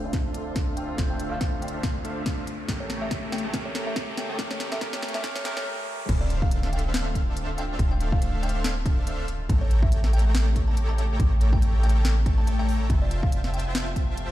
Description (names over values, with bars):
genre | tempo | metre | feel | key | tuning
future bass | 141 BPM | 4/4 | swing 56% on 16ths, half-time | D minor | A4 = 441 Hz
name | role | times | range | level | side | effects
kalimba | melody | 0.0-13.7 s | C#5 to A5 | -38 LUFS | equal | vintage 12-bit sampler grit, sidechain pumping, low-pass filter, digital delay
bell-like tine electric piano | accompaniment | 0.0-6.1 s | A3 to C5 | -36 LUFS | right 1 dB | auto-pan, sidechain pumping, digital delay
dark chamber string section | sustained chords | 0.0-14.3 s | C3 to E5 | -40 LUFS | left 3 dB | sidechain pumping
dense compressed supersaw | riff | 0.0-14.3 s | A3 to Bb5 | -33 LUFS | left 1 dB | sidechain pumping, low-pass filter
warm 808-style bass | bass | 0.0-14.3 s | D1 to A1 | -25 LUFS | equal | sidechain pumping
riser and impact | sound effects | 1.0-7.8 s | none | -38 LUFS | equal | none
electronic kick drum | drums | 0.1-14.1 s | none | -25 LUFS | equal | overdrive
trap drum kit | drums | 0.1-14.3 s | crash cymbal, hi-hat, snare drum | -33 LUFS | left 1 dB | none
room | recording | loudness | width
little or no reverb | played on a big sound system in a bare room, large studio reverb, high-pass filter | -23 LUFS | side -14 dB against mid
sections
0.0-6.1 A section; 6.1-14.3 B section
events
build-up 0.0-6.1; drum fill 0.0-5.7; filter sweep on supersaw synth 0.0-6.1; filter sweep on kalimba 0.0-6.1; filter sweep 0.0-6.1; riser 1.0-6.1; break 5.7-6.1; drop 6.1-14.3; impact 6.1-7.8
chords
0.0 Dm7; 2.7 A7b9; 6.1 Dm7; 9.5 A7b9; 12.9 Fmaj7